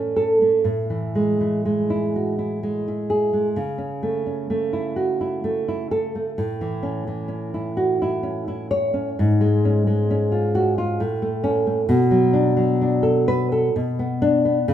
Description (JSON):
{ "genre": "romantic piece for solo classical guitar", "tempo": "61-68 BPM", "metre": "3/4", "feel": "rubato", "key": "A major", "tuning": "A4 = 443 Hz", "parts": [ { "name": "nylon-string guitar", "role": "solo", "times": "0.0-14.7 s", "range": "G#2 to C#5", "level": "-19 LUFS", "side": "equal", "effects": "none" } ], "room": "moderate recital hall reverb, RT60 1.9 s", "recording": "minimal, uncompressed stereo recording", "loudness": "-19 LUFS", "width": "side -10 dB against mid", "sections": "0.0-14.7 A section", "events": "none", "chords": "0.0 A; 0.7 E/A; 3.6 A/C#; 6.4 A; 9.2 C#/G#; 11.0 A; 11.9 Bm7; 13.7 Bm" }